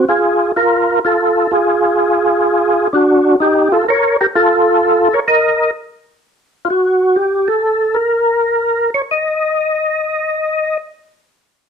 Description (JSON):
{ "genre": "jazz", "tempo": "89-127 BPM", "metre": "4/4", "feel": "swing 68% on 8ths", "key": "unclear", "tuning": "A4 = 440 Hz", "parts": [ { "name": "percussive tonewheel organ", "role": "solo", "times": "0.0-10.8 s", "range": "D4 to Eb5", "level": "-12 LUFS", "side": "equal", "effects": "slow rotary speaker, overdrive, chorus vibrato" } ], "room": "moderate studio reverb, RT60 0.8 s", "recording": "dark, warm production", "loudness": "-12 LUFS", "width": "side -6 dB against mid", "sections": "0.0-7.1 A section; 7.1-11.5 B section", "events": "slowing down 7.1-11.5", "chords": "0.0 Fm; 1.5 Ddim; 3.4 Ebadd9; 6.2 N.C." }